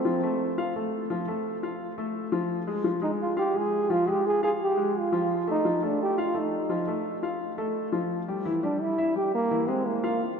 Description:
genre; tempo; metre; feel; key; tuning
jazz; 171 BPM; 4/4; straight; unclear; A4 = 439 Hz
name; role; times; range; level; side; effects
breathy trombone; melody; 0.0-0.5, 3.0-10.2 s; Bb3 to Ab4; -27 LUFS; right 2 dB; none
warm baby grand piano; accompaniment; 0.0-10.3 s; E3 to F5; -28 LUFS; left 2 dB; none
room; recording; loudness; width
wet cathedral reverb, RT60 4.6 s; recorded in a church or concert hall; -25 LUFS; side -6 dB against mid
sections
0.0-10.4 A section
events
none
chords
0.0 F; 5.7 F7; 8.5 E(#9); 9.9 Bb5

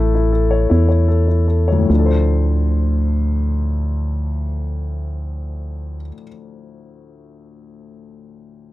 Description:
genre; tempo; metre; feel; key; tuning
six-eight pop ballad; 48 BPM (dotted quarters); 6/8; straight; D minor; A4 = 441 Hz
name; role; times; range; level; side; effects
clear grand piano; accompaniment; 0.0-8.7 s; D2 to C#5; -23 LUFS; left 6 dB; none
organ-like FM bass; bass; 0.0-6.1 s; A1 to E2; -17 LUFS; right 1 dB; none
room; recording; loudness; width
little or no reverb; dry, close 1970s-style studio recording; -15 LUFS; side -16 dB against mid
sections
0.0-1.9 A section; 1.9-6.9 B section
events
slowing down 0.0-1.9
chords
0.0 A; 1.9 Dm7

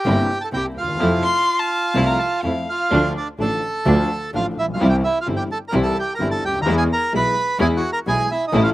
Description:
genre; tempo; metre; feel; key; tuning
tango; 127 BPM; 4/4; rubato; D minor; A4 = 440 Hz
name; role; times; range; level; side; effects
bandoneon; melody; 0.0-8.7 s; D4 to B5; -21 LUFS; right 2 dB; slapback echo
warm studio string section; stabs; 0.0-8.7 s; F3 to E4; -24 LUFS; right 1 dB; none
warm concert grand piano; accompaniment; 0.1-8.7 s; G1 to A4; -24 LUFS; left 3 dB; none
clear double bass; bass; 0.1-8.7 s; G1 to F2; -22 LUFS; right 1 dB; none
warm violin; second line; 1.2-2.9 s; F5 to C6; -21 LUFS; left 2 dB; none
room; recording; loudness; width
little or no reverb; recorded outdoors, with no room sound, vinyl crackle; -17 LUFS; side -16 dB against mid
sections
0.0-2.9 A section; 2.9-8.7 B section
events
none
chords
0.0 C7; 1.0 Fmaj7; 2.9 Dm; 4.8 C; 6.7 E

